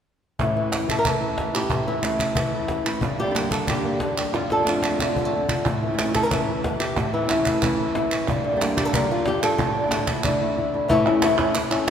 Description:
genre	flamenco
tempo	183 BPM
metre	4/4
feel	straight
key	A phrygian dominant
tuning	A4 = 436 Hz
part	flamenco guitar	melody	0.4-11.9 s	F2 to Bb4	-22 LUFS	left 1 dB	none
part	flamenco guitar	stabs	0.4-10.9 s	F2 to G4	-28 LUFS	right 2 dB	none
part	cajon	percussion	0.4-11.9 s	none	-28 LUFS	left 1 dB	none
part	palmas hand claps	percussion	0.4-11.9 s	none	-28 LUFS	right 4 dB	none
room	wet church reverb, RT60 3.2 s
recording	recorded in a church or concert hall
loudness	-20 LUFS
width	side -8 dB against mid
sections	0.4-10.9 A section; 10.9-11.9 B section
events	drum fill 4.3-5.7; break 10.6-10.9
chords	0.4 A; 3.0 Gm; 4.3 Dm/F; 5.7 A; 8.3 Gm; 9.6 Asus4; 10.9 A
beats	| 0.39 0.72 1.05 1.38 | 1.71 2.04 2.37 2.70 | 3.03 3.35 3.68 4.01 | 4.34 4.67 5.00 5.33 | 5.66 5.98 6.31 6.64 | 6.97 7.30 7.62 7.95 | 8.28 8.61 8.94 9.26 | 9.59 9.92 10.24 10.57 | 10.90 11.23 11.55 11.88

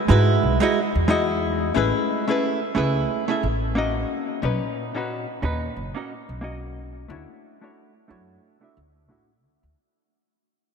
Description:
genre	sunset chillout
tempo	90 BPM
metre	4/4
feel	swing 58% on 16ths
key	unclear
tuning	A4 = 441 Hz
part	hollow-body jazz guitar	accompaniment	0.1-9.3 s	A#2 to E5	-22 LUFS	moving between left 6 dB and right 5 dB	auto-pan, low-pass filter, analog delay
part	upright bass	bass	0.1-9.7 s	F#1 to G#2	-24 LUFS	equal	none
room	wet cathedral reverb, RT60 5.2 s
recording	dreamy mix soaked in reverb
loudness	-20 LUFS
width	side -6 dB against mid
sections	0.0-9.8 A section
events	fade-out 0.0-9.8; filter sweep on hollow-body jazz guitar 0.0-9.8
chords	0.0 Emaj9; 1.8 Amaj9; 4.1 Bmaj9; 7.1 Dmaj9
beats	0.43 1.09 | 1.76 2.43 3.10 3.76 | 4.43 5.09 5.76 6.43 | 7.09 7.76 8.43 9.10

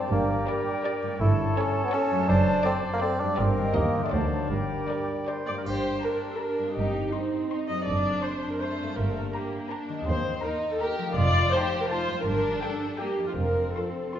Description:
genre	cinematic, playful, whimsical film cue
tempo	164 BPM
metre	3/4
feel	straight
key	G minor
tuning	A4 = 440 Hz
part	bright clarinet	second line	0.0-5.5, 14.1-14.2 s	F4 to C5	-34 LUFS	equal	none
part	mellow small flute group	second line	0.0-5.5 s	G5 to A5	-35 LUFS	left 1 dB	none
part	warm oboe	second line	0.0-5.6 s	Bb4 to Eb5	-38 LUFS	right 1 dB	none
part	muted chamber viola section	accompaniment	0.0-14.2 s	Eb4 to Eb5	-30 LUFS	equal	none
part	warm bassoon	accompaniment	0.0-5.5 s	F#3 to E4	-29 LUFS	right 1 dB	none
part	mellow French horn section	sustained chords	0.0-14.2 s	F3 to D5	-37 LUFS	equal	none
part	concert harp	arpeggios	0.0-14.2 s	F2 to C5	-34 LUFS	left 3 dB	none
part	muted chamber cello section	bass	0.1-13.7 s	D2 to G2	-31 LUFS	right 2 dB	none
part	muted chamber double bass section	bass	0.1-13.7 s	F1 to Eb2	-30 LUFS	right 1 dB	none
part	muted chamber violin section	melody	0.5-14.2 s	C#5 to C6	-38 LUFS	left 2 dB	none
part	muted chamber violin section	second line	0.5-14.2 s	A3 to C5	-36 LUFS	left 1 dB	none
part	triangle	percussion	5.7-6.4 s	none	-54 LUFS	equal	none
room	wet recital hall reverb, RT60 1.7 s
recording	recorded in a church or concert hall, nothing above 7.7 kHz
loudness	-24 LUFS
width	side -10 dB against mid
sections	0.0-5.7 A section; 5.7-14.2 A section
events	none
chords	0.1 Gm; 1.2 A7/G; 2.3 D7/F#; 3.4 Gm; 3.8 Eb; 4.1 D7; 4.5 Gm; 6.8 Cm/G; 7.9 D7/F#; 9.0 Gm; 10.1 Cm7/Eb; 11.2 F7; 12.2 Gm; 13.4 F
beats	| 0.11 0.48 0.85 | 1.21 1.57 1.93 | 2.29 2.65 3.02 | 3.39 3.75 4.13 | 4.51 4.90 5.28 | 5.67 6.04 6.40 | 6.77 7.14 7.51 | 7.88 8.24 8.61 | 8.97 9.34 9.71 | 10.07 10.43 10.80 | 11.16 11.53 11.89 | 12.25 12.61 12.99 | 13.37 13.75 14.14

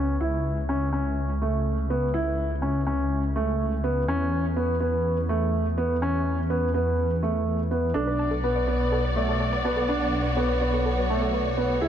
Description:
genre	piano and strings electronica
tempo	124 BPM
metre	4/4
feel	straight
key	B minor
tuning	A4 = 440 Hz
part	warm upright piano	riff	0.0-11.9 s	A3 to E4	-26 LUFS	right 1 dB	low-pass filter, tape echo
part	dark detuned saw bass	bass	0.0-11.9 s	B1 to E2	-27 LUFS	equal	none
part	warm studio string section	sustained chords	8.0-11.9 s	B3 to D5	-28 LUFS	left 2 dB	none
part	soft round pluck	arpeggios	8.0-11.9 s	G#4 to A5	-32 LUFS	left 1 dB	chorus, tape echo
room	moderate huge ambient reverb, RT60 4.8 s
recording	dark, warm production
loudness	-23 LUFS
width	side -9 dB against mid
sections	0.0-11.9 A section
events	none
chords	0.2 A/C#; 4.1 E5; 8.0 Bm7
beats	| 0.21 0.69 1.18 1.66 | 2.14 2.63 3.11 3.60 | 4.08 4.56 5.05 5.53 | 6.01 6.50 6.98 7.47 | 7.95 8.43 8.92 9.40 | 9.89 10.37 10.85 11.34 | 11.82

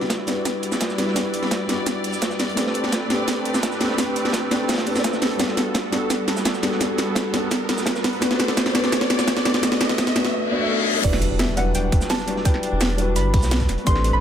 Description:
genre	liquid drum and bass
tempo	170 BPM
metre	4/4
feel	straight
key	E minor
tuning	A4 = 440 Hz
part	felt-muted upright piano	accompaniment	0.0-14.2 s	F#3 to E5	-24 LUFS	left 1 dB	low-pass filter, tape echo
part	muted symphonic string section	sustained chords	0.0-14.2 s	G3 to D5	-30 LUFS	right 2 dB	sidechain pumping, low-pass filter
part	drum and bass drum kit	drums	0.0-14.1 s	cabasa, crash cymbal, hi-hat, snare drum	-24 LUFS	equal	overdrive, small room reverb
part	riser, reverse cymbal and impact	sound effects	3.7-12.5 s	none	-29 LUFS	equal	none
part	crunchy breakbeat drum kit	drums	0.1-14.1 s	hi-hat, snare drum	-29 LUFS	right 1 dB	high-pass filter on hats, small room reverb, high-pass filter on snare, high-pass filter on room, analog delay
part	electronic kick drum	drums	0.1-13.9 s	none	-22 LUFS	equal	overdrive, high-pass filter on kick, small room reverb
part	soft round pluck	melody	11.0-14.2 s	D5 to C6	-28 LUFS	right 1 dB	chorus, dub echo
part	warm sub bass	bass	11.0-14.2 s	E1 to B1	-22 LUFS	equal	none
room	moderate plate reverb, RT60 1.8 s, studio reverb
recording	echo-heavy mix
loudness	-19 LUFS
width	side -9 dB against mid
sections	0.0-11.0 A section; 11.0-14.2 B section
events	build-up 0.0-11.0; drum fill 0.0-10.3; filter sweep on felt piano 0.0-11.0; riser 3.7-10.3; reverse cymbal 10.3-11.0; drop 11.0-14.2; impact 11.0-12.5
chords	0.0 Em9; 2.6 Am11; 5.4 Gmaj9; 8.2 Bm7; 11.0 Em9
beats	0.10 0.46 0.81 | 1.16 1.51 1.87 2.22 | 2.57 2.93 3.28 3.63 | 3.98 4.34 4.69 5.04 | 5.40 5.75 6.10 6.46 | 6.81 7.16 7.51 7.87 | 8.22 8.57 8.93 9.28 | 9.63 9.98 10.34 10.69 | 11.04 11.40 11.75 12.10 | 12.46 12.81 13.16 13.51 | 13.87

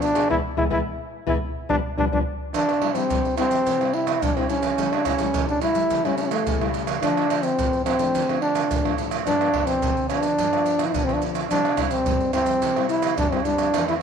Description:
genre	samba and choro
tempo	107 BPM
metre	4/4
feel	straight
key	C major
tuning	A4 = 439 Hz
part	breathy trombone	melody	0.0-13.9 s	A3 to E4	-22 LUFS	equal	none
part	nylon-string guitar	accompaniment	0.0-14.0 s	F2 to G#4	-29 LUFS	left 12 dB	none
part	maracas, pandeiro, tamborim and surdo	percussion	0.0-14.0 s	none	-26 LUFS	right 5 dB	none
room	moderate echo chamber reverb, RT60 1.7 s, studio ambience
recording	1960s-style stereo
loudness	-20 LUFS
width	side -7 dB against mid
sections	0.0-2.5 A section; 2.5-14.0 B section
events	band accent 0.3-2.5; drum fill 2.1-2.5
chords	0.3 E; 1.4 G7; 2.5 Cadd9; 4.8 A7/C#; 7.0 Dm; 9.3 G7; 11.5 C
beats	| 0.30 0.86 1.42 1.98 | 2.54 3.10 3.67 4.23 | 4.79 5.35 5.91 6.47 | 7.03 7.59 8.15 8.71 | 9.27 9.83 10.38 10.94 | 11.50 12.06 12.62 13.18 | 13.74

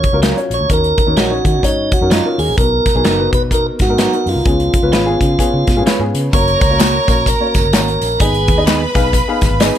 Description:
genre	uptempo 1960s-style soul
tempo	128 BPM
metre	4/4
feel	swing 60% on 8ths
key	F# major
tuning	A4 = 440 Hz
part	tonewheel organ	melody	0.0-8.6 s	D#4 to C#5	-17 LUFS	right 2 dB	overdrive, stopped rotary speaker, plate reverb
part	dark upright piano	accompaniment	0.0-9.8 s	G#2 to E#5	-20 LUFS	left 3 dB	plate reverb
part	vintage muted fingered electric bass	bass	0.0-9.7 s	F#1 to D#3	-19 LUFS	equal	none
part	natural country drum kit	drums	0.0-9.8 s	hi-hat, kick drum, snare drum	-16 LUFS	equal	none
part	electric guitar through a small old amp	stabs	0.2-9.8 s	F#3 to B4	-21 LUFS	right 4 dB	lush chorus, plate reverb, tape echo
part	bright studio violin section	second line	6.3-9.8 s	A#4 to B5	-22 LUFS	right 1 dB	plate reverb
part	tambourine and handclaps	percussion	6.6-9.7 s	none	-25 LUFS	left 4 dB	none
room	light reverb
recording	none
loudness	-12 LUFS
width	side -10 dB against mid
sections	0.0-6.3 A section; 6.3-9.8 B section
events	none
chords	0.0 F#maj7; 0.7 D#m7; 2.6 Bmaj7; 4.5 C#7; 6.3 F#; 8.2 G#m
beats	0.23 | 0.69 1.17 1.64 2.10 | 2.58 3.04 3.52 3.98 | 4.45 4.92 5.39 5.86 | 6.33 6.80 7.27 7.74 | 8.20 8.67 9.14 9.61

